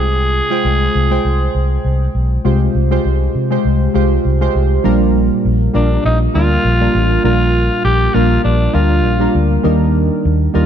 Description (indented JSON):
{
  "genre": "1980s-style pop",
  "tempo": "100 BPM",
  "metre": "4/4",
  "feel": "swing 55% on 16ths",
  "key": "Bb major from 4.8 s",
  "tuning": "A4 = 440 Hz",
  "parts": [
    { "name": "breathy tenor saxophone", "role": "melody", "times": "0.0-2.1, 5.8-10.7 s", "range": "D4 to Ab4", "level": "-18 LUFS", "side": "equal", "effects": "tape echo" },
    { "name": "warm analog keys", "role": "accompaniment", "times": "0.0-10.7 s", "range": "Bb2 to G5", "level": "-16 LUFS", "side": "equal", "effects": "chorus" },
    { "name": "vintage muted fingered electric bass", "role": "bass", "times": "0.0-10.7 s", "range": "A1 to C3", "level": "-14 LUFS", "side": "equal", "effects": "none" }
  ],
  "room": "light reverb, small room ambience",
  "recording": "dark, warm production",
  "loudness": "-12 LUFS",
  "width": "side -9 dB against mid",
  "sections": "0.0-2.4 A section; 2.4-4.8 B section; 4.8-10.7 C section",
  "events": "none",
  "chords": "0.0 Fmadd9/C; 4.8 Bb6; 9.6 Ebmaj7",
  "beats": "| 0.05 0.65 1.25 1.85 | 2.45 3.05 3.65 4.25 | 4.85 5.45 6.05 6.65 | 7.25 7.85 8.45 9.05 | 9.65 10.25"
}